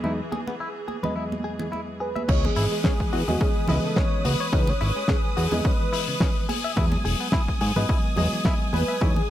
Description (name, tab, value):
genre	nu-disco, nu disco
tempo	107 BPM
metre	4/4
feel	swing 55% on 16ths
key	C# minor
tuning	A4 = 440 Hz
part	reed electric piano	accompaniment	0.0-9.2 s	E2 to D#5	-30 LUFS	equal	vintage 12-bit sampler grit, tape echo
part	bright studio string section	sustained chords	0.0-9.3 s	E3 to D#6	-33 LUFS	equal	sidechain pumping
part	direct-recorded clean electric guitar	riff	0.0-9.1 s	C#3 to E5	-33 LUFS	left 3 dB	wide subtle chorus, low-pass filter
part	congas	percussion	0.0-9.3 s	none	-32 LUFS	right 3 dB	none
part	wide unison lead	melody	2.0-9.3 s	F#4 to C#5	-30 LUFS	equal	digital delay
part	fat analog bass	bass	2.3-9.2 s	E1 to G#2	-24 LUFS	equal	none
part	damped 70s drum kit	drums	2.3-8.9 s	crash cymbal, hi-hat, snare drum	-30 LUFS	left 2 dB	none
part	electronic kick drum	drums	2.3-9.1 s	none	-24 LUFS	equal	overdrive
room	studio reverb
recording	none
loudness	-22 LUFS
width	side -12 dB against mid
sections	0.0-2.3 A section; 2.3-9.3 B section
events	drop 2.3-9.3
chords	0.0 Emaj7; 2.3 C#m9; 6.5 Emaj7